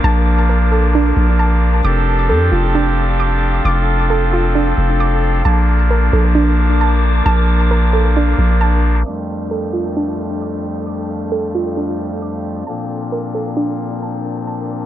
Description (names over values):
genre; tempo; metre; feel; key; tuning
hip hop; 133 BPM; 4/4; half-time; F major; A4 = 441 Hz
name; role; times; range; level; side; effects
pipe organ, soft reed; sustained chords; 0.0-14.9 s; F2 to A4; -20 LUFS; left 1 dB; none
soft round pluck; arpeggios; 0.0-14.9 s; D4 to D6; -21 LUFS; right 3 dB; chorus, ping-pong delay
long sustained 808-style bass; bass; 0.0-9.0 s; F1 to F2; -14 LUFS; equal; none
wind-like tuned noise texture; texture; 0.0-14.9 s; A4 to D6; -27 LUFS; left 2 dB; built-in reverb
room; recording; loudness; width
digital ambience; low-pass filter; -13 LUFS; side -12 dB against mid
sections
0.0-9.1 A section; 9.1-14.9 B section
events
filter sweep 9.1-14.9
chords
0.0 Bbmaj7; 1.8 F6; 5.5 Bbmaj7; 9.1 F6; 12.7 Bbmaj7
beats
| 0.04 0.49 0.94 1.39 | 1.84 2.29 2.75 3.20 | 3.65 4.10 4.55 5.00 | 5.45 5.90 6.36 6.81 | 7.26 7.71 8.16 8.61 | 9.06 9.51 9.96 10.41 | 10.87 11.32 11.77 12.22 | 12.67 13.12 13.57 14.02 | 14.48